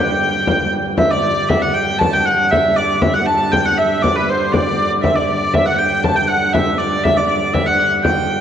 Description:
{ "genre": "medieval dance", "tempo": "119 BPM", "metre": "2/4", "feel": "straight", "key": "unclear", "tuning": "A4 = 438 Hz", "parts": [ { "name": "rich hurdy-gurdy", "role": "melody", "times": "0.0-8.4 s", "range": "B4 to A5", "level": "-15 LUFS", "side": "equal", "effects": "none" }, { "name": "pipe organ, cornet", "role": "drone", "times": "0.0-8.4 s", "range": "G2 to D3", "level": "-23 LUFS", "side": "right 2 dB", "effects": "none" }, { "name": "frame drum", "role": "percussion", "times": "0.5-8.4 s", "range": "none", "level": "-20 LUFS", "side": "left 2 dB", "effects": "none" } ], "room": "wet church reverb, RT60 2.7 s", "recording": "worn, warbling old tape, cassette tape, warbly pitch drift", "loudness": "-13 LUFS", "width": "side -9 dB against mid", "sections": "1.0-8.4 A section", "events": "speeding up 0.0-8.4", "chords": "none" }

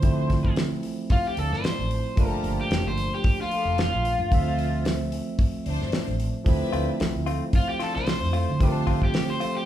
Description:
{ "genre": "straight-eighth soul blues", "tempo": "112 BPM", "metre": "4/4", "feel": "swing 55% on 16ths", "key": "D minor", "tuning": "A4 = 440 Hz", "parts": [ { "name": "overdriven semi-hollow guitar", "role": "melody", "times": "0.0-9.7 s", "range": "F4 to C5", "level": "-28 LUFS", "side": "left 1 dB", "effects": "none" }, { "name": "barky tine electric piano", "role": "accompaniment", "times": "0.0-9.7 s", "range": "F3 to E5", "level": "-30 LUFS", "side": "right 2 dB", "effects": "slow stereo tremolo" }, { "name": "clear studio string section", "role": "sustained chords", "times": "0.0-9.1 s", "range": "D4 to Bb5", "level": "-38 LUFS", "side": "left 4 dB", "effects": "none" }, { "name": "vintage muted fingered electric bass", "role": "bass", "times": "0.0-9.3 s", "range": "F1 to D3", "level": "-28 LUFS", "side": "right 1 dB", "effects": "none" }, { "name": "damped 70s drum kit", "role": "drums", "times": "0.0-9.5 s", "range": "hi-hat, kick drum, snare drum", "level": "-25 LUFS", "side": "equal", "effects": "none" }, { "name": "direct-recorded clean electric guitar", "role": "stabs", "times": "6.7-9.6 s", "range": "A3 to F4", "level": "-34 LUFS", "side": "left 6 dB", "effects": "none" } ], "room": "moderate large studio reverb, RT60 1.2 s", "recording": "band playing live in one room", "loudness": "-22 LUFS", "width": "side -12 dB against mid", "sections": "0.0-9.7 A section", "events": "overdriven electric guitar solo 0.0-9.7", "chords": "0.0 Dm7; 2.2 Gm7; 4.3 Dm7" }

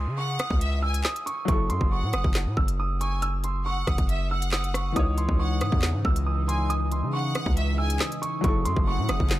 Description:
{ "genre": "hip hop, drill", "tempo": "138 BPM", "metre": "4/4", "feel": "half-time", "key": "C# harmonic minor", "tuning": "A4 = 438 Hz", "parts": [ { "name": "dark grand piano", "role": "melody", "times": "0.0-9.4 s", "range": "B#5 to E6", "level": "-31 LUFS", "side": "right 3 dB", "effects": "none" }, { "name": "felt-muted upright piano", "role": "accompaniment", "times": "0.0-9.4 s", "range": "E3 to C#5", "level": "-34 LUFS", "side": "left 3 dB", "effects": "none" }, { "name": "distorted 808-style bass", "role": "bass", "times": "0.0-9.4 s", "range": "F#1 to C#3", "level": "-26 LUFS", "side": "equal", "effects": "distortion" }, { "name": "downlifter", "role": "sound effects", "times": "0.0-1.5 s", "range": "none", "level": "-49 LUFS", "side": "right 2 dB", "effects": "none" }, { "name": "bright symphonic violin section", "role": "second line", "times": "0.2-9.3 s", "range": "E5 to G#5", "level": "-35 LUFS", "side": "left 1 dB", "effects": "ping-pong delay" }, { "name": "drill drum kit", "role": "drums", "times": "0.4-9.4 s", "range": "handclaps, hi-hat, kick drum, rim click, snare drum", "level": "-26 LUFS", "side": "equal", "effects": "none" }, { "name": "sweeping resonant pad", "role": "sustained chords", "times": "5.0-9.4 s", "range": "C#3 to E4", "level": "-33 LUFS", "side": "equal", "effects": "chorus" } ], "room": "little or no reverb", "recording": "none", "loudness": "-23 LUFS", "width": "side -15 dB against mid", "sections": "0.0-9.4 A section", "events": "none", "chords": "0.0 C#madd9; 1.5 F#m7; 5.0 C#madd9; 8.4 F#m7" }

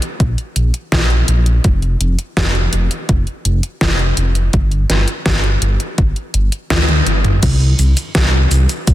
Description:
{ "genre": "synthwave", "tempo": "83 BPM", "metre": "4/4", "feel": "straight", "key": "unclear", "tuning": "A4 = 440 Hz", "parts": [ { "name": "pop drum kit", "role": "drums", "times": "0.0-8.9 s", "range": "crash cymbal, hi-hat, shaker, snare drum, toms", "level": "-18 LUFS", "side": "equal", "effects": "overdrive" }, { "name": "dark detuned saw bass", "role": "bass", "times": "0.2-8.9 s", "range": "F1 to D2", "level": "-14 LUFS", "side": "equal", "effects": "none" }, { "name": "electronic kick drum", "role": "drums", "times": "0.2-8.9 s", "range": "none", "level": "-16 LUFS", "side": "equal", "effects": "overdrive" } ], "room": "light reverb", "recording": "dense, heavily limited modern master", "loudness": "-13 LUFS", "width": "side -14 dB against mid", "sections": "0.0-7.4 A section; 7.4-8.9 B section", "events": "drum fill 6.7-7.4; band accent 6.7-7.1", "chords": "none" }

